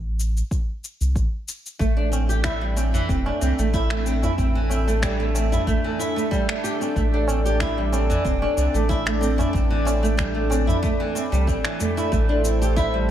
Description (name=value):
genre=organic downtempo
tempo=93 BPM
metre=4/4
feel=swing 54% on 16ths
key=A minor pentatonic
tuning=A4 = 440 Hz
part: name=round analog bass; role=bass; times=0.0-13.1 s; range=E1 to C2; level=-22 LUFS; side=equal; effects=none
part: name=electronic cabasa and finger snaps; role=drums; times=0.2-12.9 s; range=none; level=-31 LUFS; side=left 1 dB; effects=none
part: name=electronic kick drum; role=drums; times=0.5-12.9 s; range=none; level=-26 LUFS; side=equal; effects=none
part: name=warm analog pad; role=sustained chords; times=1.8-13.1 s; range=A3 to E5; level=-28 LUFS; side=equal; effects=chorus, sidechain pumping
part: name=flamenco guitar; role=arpeggios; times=1.8-13.1 s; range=E3 to G4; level=-24 LUFS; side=right 2 dB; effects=lush chorus, diffuse ambient delay
part: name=tabla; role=percussion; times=2.1-12.1 s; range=none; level=-32 LUFS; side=right 1 dB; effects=none
room=moderate plate reverb, RT60 1.9 s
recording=dreamy mix soaked in reverb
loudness=-20 LUFS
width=side -11 dB against mid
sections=0.0-12.1 A section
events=none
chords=0.0 Am; 1.8 Am7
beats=0.51 1.16 | 1.80 2.45 3.09 3.74 | 4.38 5.03 5.67 6.32 | 6.96 7.61 8.25 8.90 | 9.54 10.19 10.83 11.48 | 12.12 12.77